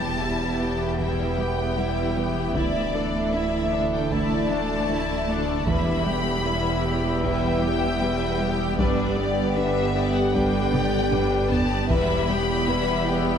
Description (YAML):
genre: cinematic, hybrid orchestral and electronic film score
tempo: 77 BPM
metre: 4/4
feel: straight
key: E minor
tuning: A4 = 442 Hz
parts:
  - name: clear studio violin section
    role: melody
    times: 0.0-13.4 s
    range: D5 to B5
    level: -31 LUFS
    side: left 4 dB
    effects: none
  - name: rich symphonic violin section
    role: second line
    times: 0.0-13.4 s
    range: E4 to G5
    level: -30 LUFS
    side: left 4 dB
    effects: none
  - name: clear symphonic viola section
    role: accompaniment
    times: 0.0-13.4 s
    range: G3 to G4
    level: -31 LUFS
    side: right 1 dB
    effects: none
  - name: analog drone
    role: sustained chords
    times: 0.5-13.4 s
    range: G3 to E5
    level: -31 LUFS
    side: equal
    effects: chorus
  - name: mellow French horn section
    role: sustained chords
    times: 0.0-13.4 s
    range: B3 to G4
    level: -30 LUFS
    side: left 4 dB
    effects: none
  - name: warm trombone section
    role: sustained chords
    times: 0.0-13.4 s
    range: D3 to B3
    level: -32 LUFS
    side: right 5 dB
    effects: none
  - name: soft round pluck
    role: arpeggios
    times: 0.0-12.9 s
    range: D3 to D4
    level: -33 LUFS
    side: equal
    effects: none
  - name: clear symphonic cello section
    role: bass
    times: 0.0-13.4 s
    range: D2 to G2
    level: -31 LUFS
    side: right 2 dB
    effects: none
  - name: rich studio double bass section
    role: bass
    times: 0.0-13.4 s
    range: E1 to D2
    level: -31 LUFS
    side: right 4 dB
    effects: none
  - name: sub bass with octave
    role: bass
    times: 0.0-13.4 s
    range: D1 to G1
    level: -33 LUFS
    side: equal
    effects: none
  - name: impact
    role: sound effects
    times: 0.0-2.6 s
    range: none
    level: barely audible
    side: none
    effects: none
  - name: taiko ensemble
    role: drums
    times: 1.0-13.0 s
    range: none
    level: -30 LUFS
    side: equal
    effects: none
room: wet scoring stage reverb, RT60 1.5 s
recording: none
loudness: -21 LUFS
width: side -8 dB against mid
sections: 0.0-13.4 A section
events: impact 0.0-2.6; drum fill 10.7-11.9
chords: 0.0 Em; 2.6 Dsus2; 5.7 Em; 8.8 G; 11.9 Em